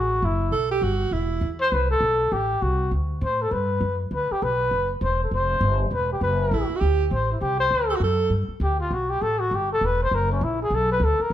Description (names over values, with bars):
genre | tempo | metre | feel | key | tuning
jazz, small-group swing and bop | 200 BPM | 4/4 | swing 62% on 8ths | G major | A4 = 440 Hz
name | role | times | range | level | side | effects
breathy trumpet | melody | 0.0-11.3 s | C#4 to C5 | -23 LUFS | left 2 dB | none
upright bass | bass | 0.0-11.3 s | E1 to A2 | -24 LUFS | equal | none
clear alto saxophone | second line | 0.5-1.5, 6.5-8.3 s | E4 to A4 | -26 LUFS | right 6 dB | none
room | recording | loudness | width
moderate large studio reverb, RT60 1.2 s | none | -21 LUFS | side -11 dB against mid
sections
0.0-8.3 A section; 8.3-11.3 B section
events
trumpet solo 8.3-11.3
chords
0.0 F#m7; 0.5 B5; 1.1 E5; 2.3 Am7; 2.9 D5; 3.5 Gmaj7; 4.7 Am6 (rootless); 5.3 Fsus2; 5.9 E9sus4; 7.1 Am; 7.7 D7; 8.3 G; 9.5 Emadd11; 10.1 F#; 10.7 Bm